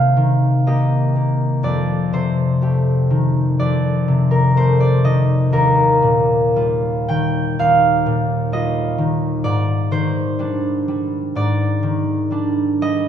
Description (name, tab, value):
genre	classical, solo harp piece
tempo	62 BPM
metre	4/4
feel	rubato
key	unclear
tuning	A4 = 440 Hz
part	concert harp	solo	0.0-13.1 s	Eb2 to G5	-15 LUFS	equal	none
room	moderate scoring stage reverb, RT60 2.0 s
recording	dark, warm production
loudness	-15 LUFS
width	side -9 dB against mid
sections	0.0-13.1 A section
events	none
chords	0.0 Cm7; 1.6 F13; 5.5 Ebadd9; 9.4 Abmaj7#11